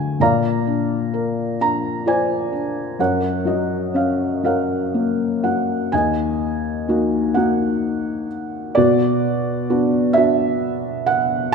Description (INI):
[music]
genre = classical, lyrical solo piano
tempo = 43 BPM (dotted quarters)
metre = 6/8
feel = rubato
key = unclear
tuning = A4 = 437 Hz
[part]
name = felt-muted upright piano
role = solo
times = 0.0-11.5 s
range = D2 to Bb5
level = -17 LUFS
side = equal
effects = none
[sound]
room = moderate scoring stage reverb, RT60 1.9 s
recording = none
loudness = -17 LUFS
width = side -5 dB against mid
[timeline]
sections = 0.0-5.9 A section; 5.9-11.5 B section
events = none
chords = 0.2 Bbadd9; 3.0 Gb; 5.9 Ebm; 8.8 Cbm